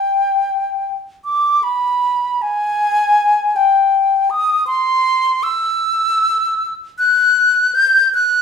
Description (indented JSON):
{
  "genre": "classical, free, expressive piece for unaccompanied flute",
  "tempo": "52 BPM (dotted quarters)",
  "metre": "6/8",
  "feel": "uneven beats, rubato",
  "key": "unclear",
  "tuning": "A4 = 440 Hz",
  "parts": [
    { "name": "mellow concert flute", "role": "solo", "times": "0.0-8.4 s", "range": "G5 to G6", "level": "-13 LUFS", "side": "left 1 dB", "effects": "none" }
  ],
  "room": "light reverb",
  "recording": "studio reverb",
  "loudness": "-13 LUFS",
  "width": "side -6 dB against mid",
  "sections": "0.0-8.4 A section",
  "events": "none",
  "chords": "none"
}